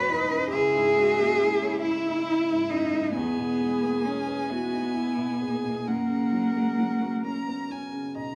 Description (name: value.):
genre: neoclassical piano and strings.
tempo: 45 BPM (dotted quarters).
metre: 6/8.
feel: rubato.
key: unclear.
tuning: A4 = 441 Hz.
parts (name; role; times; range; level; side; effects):
rich violin; melody; 0.0-8.3 s; C#5 to A#5; -39 LUFS; equal; none.
rich cello; second line; 0.0-7.2 s; A#3 to B4; -27 LUFS; equal; none.
clear upright piano; accompaniment; 0.0-8.3 s; B1 to D#5; -36 LUFS; equal; none.
rich viola; accompaniment; 0.0-7.9 s; D#4 to A#4; -34 LUFS; equal; none.
room: light reverb, small room ambience.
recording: rough home demo mix, small room reverb.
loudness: -26 LUFS.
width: mono.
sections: 0.0-8.3 A section.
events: none.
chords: 0.0 Badd9; 0.5 C#madd9; 3.2 E; 5.9 F#.